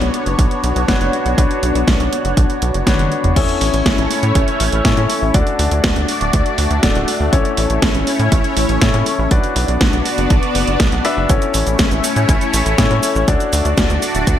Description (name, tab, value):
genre	italo disco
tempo	121 BPM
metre	4/4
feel	straight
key	unclear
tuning	A4 = 439 Hz
part	lush unison pad	sustained chords	0.0-14.4 s	A3 to D5	-20 LUFS	left 1 dB	chorus, phaser
part	warm concert grand piano	stabs	0.0-14.4 s	C#4 to E5	-21 LUFS	left 5 dB	tape echo
part	tight sequencer bass	bass	0.0-14.4 s	D1 to A2	-19 LUFS	equal	none
part	house drum kit	drums	0.0-14.4 s	cabasa, crash cymbal, hi-hat, snare drum, toms	-20 LUFS	right 1 dB	gated reverb
part	electronic kick drum	drums	0.4-14.4 s	none	-17 LUFS	equal	none
room	light reverb, digital ambience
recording	none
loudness	-13 LUFS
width	side -10 dB against mid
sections	0.0-3.4 A section; 3.4-14.4 B section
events	drum fill 2.9-3.4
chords	0.0 Bmadd9; 3.4 A; 5.3 D; 7.3 A; 9.3 Bm; 11.3 A; 13.3 D